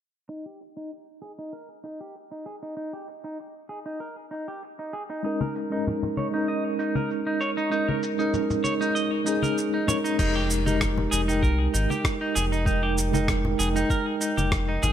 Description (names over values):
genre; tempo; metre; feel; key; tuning
sunset chillout; 97 BPM; 4/4; swing 54% on 16ths; unclear; A4 = 440 Hz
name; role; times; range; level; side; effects
clean electric guitar; arpeggios; 0.3-14.9 s; Eb4 to Eb5; -30 LUFS; right 1 dB; low-pass filter, ping-pong delay
dusty soul sampler-style drum kit; drums; 0.3-14.9 s; crash cymbal, rim click, shaker; -31 LUFS; right 1 dB; low-pass filter on perc, low-pass filter on cymbals, low-pass filter on snare, low-pass filter on room
mellow tine electric piano; accompaniment; 5.2-14.9 s; Ab3 to G5; -26 LUFS; moving between left 3 dB and right 5 dB; medium stereo tremolo, auto-pan, ping-pong delay
congas; percussion; 5.4-14.9 s; none; -30 LUFS; left 3 dB; none
round analog bass; bass; 10.2-14.9 s; F1 to C2; -26 LUFS; equal; none
electronic kick drum; drums; 10.2-14.7 s; none; -26 LUFS; equal; none
room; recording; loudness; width
moderate lush hall reverb, RT60 2.2 s; low-pass filter; -23 LUFS; side -10 dB against mid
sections
0.3-10.2 A section; 10.2-14.9 B section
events
filter sweep on drum 0.3-10.2; filter sweep on clean electric guitar 0.3-10.2; filter sweep 0.3-10.2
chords
0.3 Eb; 5.2 Eb7sus4; 10.2 Fm11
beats
| 0.29 0.91 1.53 2.15 | 2.77 3.39 4.01 4.62 | 5.24 5.86 6.48 7.10 | 7.72 8.34 8.95 9.57 | 10.19 10.81 11.43 12.05 | 12.67 13.28 13.90 14.52